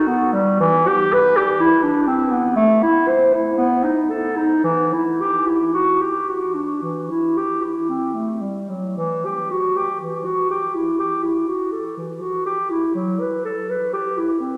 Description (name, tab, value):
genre	classical, baroque-style fantasia for unaccompanied clarinet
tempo	53-63 BPM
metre	4/4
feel	rubato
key	E minor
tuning	A4 = 440 Hz
part	dark clarinet	solo	0.0-14.6 s	E3 to C5	-20 LUFS	equal	none
room	wet cathedral reverb, RT60 4.6 s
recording	none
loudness	-20 LUFS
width	mono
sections	0.0-9.0 A section; 9.0-14.6 B section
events	none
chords	none